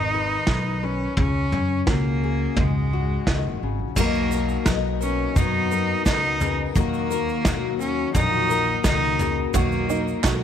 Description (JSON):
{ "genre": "indie folk with a building arrangement", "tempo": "86 BPM", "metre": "4/4", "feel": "straight", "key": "unclear", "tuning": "A4 = 440 Hz", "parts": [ { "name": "bright cello", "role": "melody", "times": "0.0-10.2 s", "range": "G#3 to D#4", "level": "-25 LUFS", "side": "right 2 dB", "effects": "slapback echo" }, { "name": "fingerpicked steel-string acoustic guitar", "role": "accompaniment", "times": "0.0-10.4 s", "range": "G#2 to B4", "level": "-28 LUFS", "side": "left 12 dB", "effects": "none" }, { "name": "upright bass", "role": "bass", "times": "0.0-10.4 s", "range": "F#1 to F#2", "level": "-26 LUFS", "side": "right 1 dB", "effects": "none" }, { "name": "vintage brush drum kit", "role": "drums", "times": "0.5-10.4 s", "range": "crash cymbal, kick drum, snare drum, toms", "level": "-25 LUFS", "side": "right 1 dB", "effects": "none" }, { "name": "picked twelve-string acoustic guitar", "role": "accompaniment", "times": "4.0-10.4 s", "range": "B2 to A#4", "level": "-30 LUFS", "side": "left 14 dB", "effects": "none" }, { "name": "egg shaker", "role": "percussion", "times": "4.0-10.4 s", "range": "none", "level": "-38 LUFS", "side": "right 18 dB", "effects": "none" }, { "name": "open-back banjo", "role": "arpeggios", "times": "9.5-10.4 s", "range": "D#4 to F#4", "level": "-27 LUFS", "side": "right 12 dB", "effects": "none" }, { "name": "group handclap", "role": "percussion", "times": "10.2-10.4 s", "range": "none", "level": "-30 LUFS", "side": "right 17 dB", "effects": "none" } ], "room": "small room ambience", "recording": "1960s-style stereo with parts hard left and right", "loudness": "-20 LUFS", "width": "side -9 dB against mid", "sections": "0.0-4.0 A section; 4.0-10.4 B section", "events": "none", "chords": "0.0 G#m; 1.2 C#sus4; 4.0 Bmaj7; 6.8 D#m; 9.5 Bmaj7" }